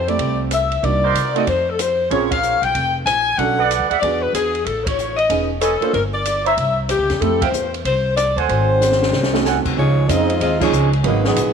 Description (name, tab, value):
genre	jazz, big band swing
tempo	188 BPM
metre	4/4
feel	swing 64% on 8ths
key	unclear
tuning	A4 = 442 Hz
part	warm saxophone section	melody	0.0-11.5 s	Gb3 to Ab5	-19 LUFS	left 4 dB	none
part	dark trumpet section	stabs	0.0-9.6 s	Eb4 to Bb5	-23 LUFS	right 10 dB	none
part	upright bass	bass	0.0-11.5 s	E1 to C3	-22 LUFS	left 1 dB	none
part	warm concert grand piano	accompaniment	0.1-11.2 s	F3 to C5	-24 LUFS	right 13 dB	none
part	open jazz drum kit	drums	0.1-11.5 s	crash cymbal, hi-hat, kick drum, ride cymbal, rim click, snare drum	-25 LUFS	equal	none
part	warm trombone section	second line	8.5-11.5 s	Eb3 to Eb4	-22 LUFS	right 10 dB	none
room	moderate echo chamber reverb, RT60 1.7 s, small room ambience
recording	1960s-style stereo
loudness	-15 LUFS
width	side -6 dB against mid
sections	0.0-9.8 A section; 9.8-11.5 B section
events	band accent 2.3, 4.8, 7.4, 10.6; drum fill 8.8-9.4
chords	0.0 Fmaj9; 0.8 Cm7b5; 1.5 F5; 2.1 Bbm9; 3.4 Bm7; 4.0 E9; 4.7 Amaj9#11; 5.9 Gm; 6.6 C; 7.2 Fmaj9; 8.5 Ab7b9; 9.8 Dbmaj9